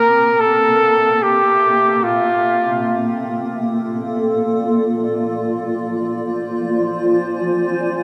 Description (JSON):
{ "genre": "ambient", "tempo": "free time", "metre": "none", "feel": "none", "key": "Bb lydian", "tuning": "A4 = 440 Hz", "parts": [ { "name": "warm flugelhorn", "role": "melody", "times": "0.0-3.3 s", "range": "F4 to Bb4", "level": "-18 LUFS", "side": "equal", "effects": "tape echo" }, { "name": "granular cloud pad", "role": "sustained chords", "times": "0.0-8.0 s", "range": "Bb3 to Ab5", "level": "-22 LUFS", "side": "equal", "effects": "built-in reverb" } ], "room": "wet cathedral reverb, RT60 6.8 s", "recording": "none", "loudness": "-17 LUFS", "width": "mono", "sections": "0.0-8.0 A section", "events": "fade-in on ambient pad 0.0-8.0", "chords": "0.0 C7; 2.0 Bbmaj7; 5.3 Fm6", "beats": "free time" }